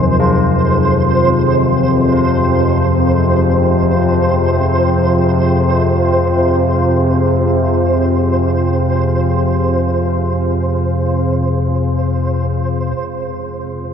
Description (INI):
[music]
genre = dark ambient drone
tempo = free time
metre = none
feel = none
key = F minor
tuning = A4 = 440 Hz
[part]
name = dark analog pad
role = sustained chords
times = 0.0-13.9 s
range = C4 to F5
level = -21 LUFS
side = right 1 dB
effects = chorus
[part]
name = carillon bells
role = arpeggios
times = 0.0-7.9 s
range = Eb3 to F4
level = -22 LUFS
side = left 2 dB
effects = diffuse ambient delay
[part]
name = analog drone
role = drone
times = 0.0-13.9 s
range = F2 to C3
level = -14 LUFS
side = left 1 dB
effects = chorus
[part]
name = flickering grainy texture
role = texture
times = 0.0-13.0 s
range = C5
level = -19 LUFS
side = right 2 dB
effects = built-in reverb
[sound]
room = wet cathedral reverb, RT60 6.1 s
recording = none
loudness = -12 LUFS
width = side -7 dB against mid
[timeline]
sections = 0.0-13.0 A section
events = fade-out on analog synth pad 0.0-13.0; fade-out on church bells 0.0-13.0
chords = 0.0 Fm